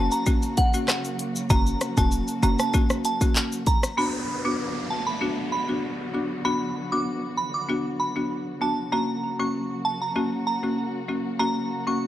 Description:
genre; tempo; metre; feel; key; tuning
dancehall; 97 BPM; 4/4; straight; B harmonic minor; A4 = 438 Hz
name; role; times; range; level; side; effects
glassy synth bell; melody; 0.0-12.0 s; F#5 to D6; -28 LUFS; right 2 dB; chorus, tremolo, analog delay
buzzing marimba with hard mallets; accompaniment; 0.0-12.0 s; A#3 to F#4; -27 LUFS; left 1 dB; none
muted studio string section; sustained chords; 0.0-12.1 s; C#3 to F#4; -35 LUFS; right 1 dB; sidechain pumping
short 808-style bass; bass; 0.0-2.6 s; E1 to F#1; -24 LUFS; equal; none
pop drum kit; drums; 0.1-4.0 s; handclaps, hi-hat, kick drum, rim click, shaker; -23 LUFS; equal; none
maracas; percussion; 0.1-4.0 s; none; -37 LUFS; left 2 dB; none
downlifter; sound effects; 4.0-8.9 s; none; -35 LUFS; right 1 dB; none
room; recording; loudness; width
little or no reverb; dry, gritty hardware recording; -23 LUFS; side -13 dB against mid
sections
0.0-4.0 A section; 4.0-12.1 B section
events
none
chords
0.0 F#; 4.0 Bm; 8.9 F#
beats
0.27 0.88 | 1.50 2.12 2.74 3.36 | 3.98 4.59 5.21 5.83 | 6.45 7.07 7.69 8.31 | 8.93 9.54 10.16 10.78 | 11.40 12.02

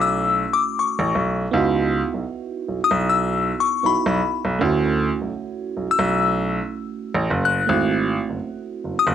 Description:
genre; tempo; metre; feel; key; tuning
contemporary R&B; 78 BPM; 4/4; swing 58% on 16ths; C# minor; A4 = 441 Hz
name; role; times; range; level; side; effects
glassy synth bell; melody; 0.0-9.1 s; B5 to F#6; -20 LUFS; left 7 dB; chorus, cassette tape, analog delay
FM electric piano with auto-pan; accompaniment; 0.0-9.1 s; A3 to F#4; -25 LUFS; right 8 dB; cassette tape
bright baby grand piano; bass; 0.0-9.1 s; F#1 to D2; -22 LUFS; right 1 dB; none
room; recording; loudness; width
light reverb; home recording on cassette; -19 LUFS; side -9 dB against mid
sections
0.0-9.1 A section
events
none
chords
0.0 Dmaj7 (rootless); 1.5 C#m11; 4.6 Dmaj7; 7.7 G#7b9b13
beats
0.76 | 1.53 2.30 3.07 3.84 | 4.61 5.38 6.15 6.92 | 7.69 8.46

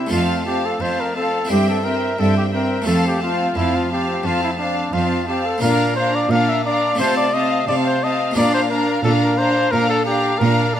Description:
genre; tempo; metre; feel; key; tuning
classical, baroque-style concerto movement with solo episodes; 87 BPM; 4/4; straight; F major; A4 = 440 Hz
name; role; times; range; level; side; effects
clear studio violin section; melody; 0.0-10.8 s; E5 to Bb5; -28 LUFS; left 2 dB; none
warm trumpet; melody; 0.0-10.8 s; D4 to F5; -21 LUFS; left 1 dB; none
harpsichord; accompaniment; 0.0-10.8 s; F2 to F4; -25 LUFS; equal; none
rich chamber viola section; accompaniment; 0.0-10.8 s; C4 to D4; -24 LUFS; equal; none
warm studio violin section; second line; 0.1-10.8 s; E5 to F5; -24 LUFS; equal; none
rich studio cello section; bass; 0.1-10.8 s; F2 to C3; -22 LUFS; right 2 dB; none
room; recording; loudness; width
moderate recital hall reverb, RT60 1.7 s; none; -16 LUFS; side -10 dB against mid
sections
0.1-10.8 A section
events
none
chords
0.1 F; 1.5 C/G; 2.9 F; 5.6 Bb; 7.0 F/C; 8.4 Bb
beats
| 0.12 0.81 1.50 2.19 | 2.88 3.56 4.25 4.93 | 5.62 6.31 6.99 7.67 | 8.36 9.04 9.73 10.41

